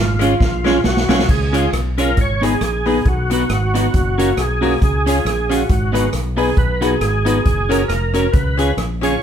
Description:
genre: ska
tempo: 136 BPM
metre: 4/4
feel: swing 56% on 8ths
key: unclear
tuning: A4 = 440 Hz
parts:
  - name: overdriven tonewheel organ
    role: melody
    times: 0.0-9.2 s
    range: E#4 to C#5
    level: -22 LUFS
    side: right 1 dB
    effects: chorus vibrato, slow rotary speaker
  - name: fingered electric bass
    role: bass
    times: 0.0-9.1 s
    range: E#1 to C#2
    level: -20 LUFS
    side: right 1 dB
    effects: none
  - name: clean electric guitar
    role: accompaniment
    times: 0.2-9.1 s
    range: B3 to C#5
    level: -22 LUFS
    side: right 3 dB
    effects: none
  - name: bright upright piano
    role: stabs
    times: 0.2-9.1 s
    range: G#3 to B4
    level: -22 LUFS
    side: left 5 dB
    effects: none
  - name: swinging big-band drum kit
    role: drums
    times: 0.2-9.1 s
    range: crash cymbal, hi-hat, kick drum, rim click, snare drum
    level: -19 LUFS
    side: equal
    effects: none
room: moderate large studio reverb, RT60 0.9 s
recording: band playing live in one room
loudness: -14 LUFS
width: side -8 dB against mid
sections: 0.0-1.3 A section; 1.3-9.2 B section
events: drum fill 0.4-1.3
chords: 0.0 C#; 2.2 G#m; 3.1 B; 3.9 F#; 4.8 C#; 5.7 G#m; 6.6 B; 7.5 F#; 8.3 C#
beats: 0.41 0.85 | 1.29 1.73 2.17 2.61 | 3.05 3.49 3.93 4.37 | 4.81 5.25 5.70 6.14 | 6.58 7.02 7.46 7.90 | 8.34 8.78 9.22

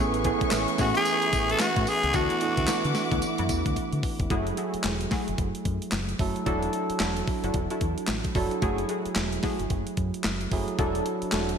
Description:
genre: R&B, new jack swing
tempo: 111 BPM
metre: 4/4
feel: swing 60% on 16ths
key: F# minor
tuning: A4 = 436 Hz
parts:
  - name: barky tine electric piano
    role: accompaniment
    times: 0.0-11.6 s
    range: E3 to A4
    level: -30 LUFS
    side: right 4 dB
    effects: wide subtle chorus
  - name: dark studio string section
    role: sustained chords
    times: 0.0-4.3 s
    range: B4 to D6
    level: -32 LUFS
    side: left 3 dB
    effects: none
  - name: funky polysynth comp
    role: stabs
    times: 0.0-11.5 s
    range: A3 to A4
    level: -33 LUFS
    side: left 2 dB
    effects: chorus
  - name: deep dub fingered electric bass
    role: bass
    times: 0.0-11.5 s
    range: E1 to D3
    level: -32 LUFS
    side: left 1 dB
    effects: none
  - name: clean 12-bit digital drum machine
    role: drums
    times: 0.1-11.6 s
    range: handclaps, hi-hat, kick drum, snare drum, tambourine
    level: -29 LUFS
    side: left 1 dB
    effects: gated reverb
  - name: growling tenor saxophone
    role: melody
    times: 0.8-3.2 s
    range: F#4 to A4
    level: -26 LUFS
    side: left 1 dB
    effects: none
room: moderate lush hall reverb, RT60 1.9 s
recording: bright 1980s-style digital production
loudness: -24 LUFS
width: side -7 dB against mid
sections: 0.0-4.3 A section; 4.3-11.6 B section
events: drum fill 3.8-4.3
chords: 0.0 Amaj9; 2.1 D69; 4.3 F#m9; 6.5 E9sus4; 8.6 F#m9; 10.8 E9sus4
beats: 0.52 1.06 1.60 | 2.14 2.68 3.22 3.76 | 4.30 4.84 5.38 5.92 | 6.46 7.00 7.55 8.09 | 8.63 9.17 9.71 10.25 | 10.79 11.33

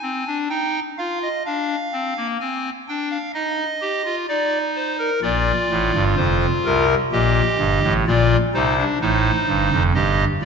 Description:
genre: classical, baroque-style 3-part fugue for pipe organ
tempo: 64 BPM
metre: 4/4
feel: straight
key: unclear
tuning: A4 = 440 Hz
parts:
  - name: pipe organ, clarinet reed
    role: solo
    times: 0.0-10.4 s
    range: F1 to Ab5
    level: -18 LUFS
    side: equal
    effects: none
room: wet concert hall reverb, RT60 1.9 s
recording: nothing above 7.8 kHz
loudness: -18 LUFS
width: side -6 dB against mid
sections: 0.0-10.4 A section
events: none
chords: 0.0 Fm7; 1.5 Bb7 (rootless); 3.4 N.C.; 5.2 Bb; 7.1 Cm7; 9.0 F7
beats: 0.52 | 1.47 2.41 3.35 4.30 | 5.24 6.18 7.13 8.07 | 9.02 9.97

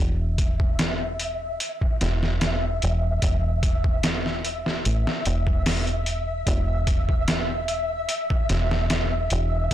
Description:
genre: trip hop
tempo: 74 BPM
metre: 4/4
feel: straight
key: unclear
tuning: A4 = 438 Hz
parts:
  - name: deep dub fingered electric bass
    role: bass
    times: 0.0-9.7 s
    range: E1 to A1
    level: -25 LUFS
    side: equal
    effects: none
  - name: flickering grainy texture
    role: texture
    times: 0.2-9.7 s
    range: E5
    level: -30 LUFS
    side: equal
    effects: built-in reverb
  - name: trip hop sampler-style drum kit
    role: drums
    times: 0.4-9.7 s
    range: hi-hat, kick drum, snare drum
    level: -24 LUFS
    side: equal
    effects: none
room: little or no reverb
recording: blown-out, overdriven recording, overdrive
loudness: -22 LUFS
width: side -12 dB against mid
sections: 0.0-9.7 A section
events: none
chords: 0.0 N.C.; 6.5 E5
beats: 0.79 1.60 2.41 | 3.22 4.04 4.85 5.66 | 6.47 7.28 8.09 8.90 | 9.71

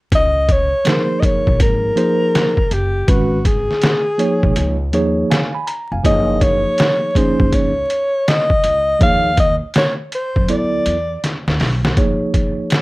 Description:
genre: hip hop, jazz-hop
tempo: 81 BPM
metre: 4/4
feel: swing 65% on 16ths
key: Db major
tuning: A4 = 439 Hz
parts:
  - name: breathy alto saxophone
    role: melody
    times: 0.1-11.2 s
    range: Gb4 to F5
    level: -17 LUFS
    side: equal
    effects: plate reverb
  - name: upright bass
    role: bass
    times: 0.1-11.9 s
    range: F1 to Gb2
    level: -22 LUFS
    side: equal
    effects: none
  - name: trip hop sampler-style drum kit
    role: drums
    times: 0.1-12.8 s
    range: hi-hat, kick drum, snare drum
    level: -17 LUFS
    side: equal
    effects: overdrive
  - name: tine electric piano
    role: accompaniment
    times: 0.8-12.8 s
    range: Eb3 to Cb6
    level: -19 LUFS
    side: right 1 dB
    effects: medium stereo tremolo, plate reverb
room: moderate studio reverb, RT60 0.6 s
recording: vinyl crackle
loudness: -14 LUFS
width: side -21 dB against mid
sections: 0.1-12.0 A section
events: drum fill 11.2-12.0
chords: 0.1 Db6; 3.1 Abm7; 4.6 Db; 6.0 Gbmaj9; 9.0 Eb9sus4; 10.5 D; 12.0 Db69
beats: | 0.12 0.86 1.60 2.34 | 3.08 3.82 4.56 5.30 | 6.04 6.79 7.53 8.27 | 9.01 9.75 10.49 11.23 | 11.97 12.71

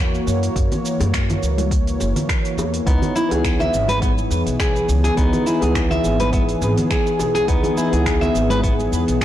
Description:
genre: organic downtempo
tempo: 104 BPM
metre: 4/4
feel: swing 54% on 16ths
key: C# dorian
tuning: A4 = 442 Hz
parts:
  - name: warm analog pad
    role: sustained chords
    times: 0.0-9.2 s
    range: E3 to C#5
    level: -23 LUFS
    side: equal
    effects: chorus, sidechain pumping
  - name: upright bass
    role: bass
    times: 0.0-9.2 s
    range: F#1 to F#2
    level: -22 LUFS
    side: equal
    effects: tube saturation, sidechain pumping
  - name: organic electronic drum kit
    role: drums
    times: 0.1-9.2 s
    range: cabasa, finger snaps, hi-hat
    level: -29 LUFS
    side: right 1 dB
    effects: soft clipping on snare
  - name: electronic kick drum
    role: drums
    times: 0.6-9.2 s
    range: none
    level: -21 LUFS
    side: equal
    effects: none
  - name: congas and bongos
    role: percussion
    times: 0.7-8.9 s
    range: none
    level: -28 LUFS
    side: left 1 dB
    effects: none
  - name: tine electric piano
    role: accompaniment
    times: 2.9-9.2 s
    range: E3 to D#4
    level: -25 LUFS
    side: left 3 dB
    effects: medium stereo tremolo, sidechain pumping, tape echo
  - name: nylon-string guitar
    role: arpeggios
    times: 2.9-9.2 s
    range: B3 to E5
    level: -22 LUFS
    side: equal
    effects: tape echo
room: light reverb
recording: blown-out, overdriven recording, overdrive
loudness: -16 LUFS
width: side -12 dB against mid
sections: 0.0-9.2 A section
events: none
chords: 0.0 F#7; 2.9 C#m7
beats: | 0.56 1.14 1.71 2.29 | 2.87 3.44 4.02 4.60 | 5.17 5.75 6.33 6.91 | 7.48 8.06 8.64 9.21

